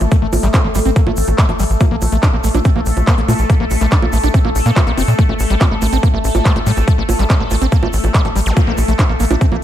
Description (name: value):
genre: psychedelic trance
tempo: 142 BPM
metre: 4/4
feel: straight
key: unclear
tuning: A4 = 440 Hz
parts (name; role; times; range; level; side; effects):
- bubbling stepped-filter texture; sustained chords; 0.0-9.6 s; A3 to A4; -22 LUFS; left 2 dB; chorus, built-in reverb, sidechain pumping
- tight sequencer bass; bass; 0.0-9.6 s; F1 to Bb2; -16 LUFS; equal; none
- big-room dance drum kit; drums; 0.0-9.6 s; bongos, handclaps, hi-hat; -22 LUFS; right 2 dB; overdrive, studio reverb
- egg shaker; percussion; 0.0-9.5 s; none; -33 LUFS; right 3 dB; none
- sub drop and zap; sound effects; 0.0-0.1, 8.5-8.6 s; none; -27 LUFS; left 1 dB; none
- screaming distorted acid line; riff; 0.1-9.6 s; G3 to D4; -22 LUFS; moving between left 8 dB and right 8 dB; distortion, chorus, auto-pan, sidechain pumping, ping-pong delay
- electronic kick drum; drums; 0.1-9.5 s; none; -14 LUFS; equal; overdrive, studio reverb
room: digital ambience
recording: dark, warm production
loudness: -12 LUFS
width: side -11 dB against mid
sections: 0.0-9.6 A section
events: none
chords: 0.0 N.C.; 1.8 Bb5; 5.2 N.C.; 8.6 Bbmaj7(no3)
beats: | 0.12 0.54 0.96 1.38 | 1.81 2.23 2.65 3.07 | 3.50 3.92 4.34 4.76 | 5.19 5.61 6.03 6.45 | 6.88 7.30 7.72 8.14 | 8.57 8.99 9.41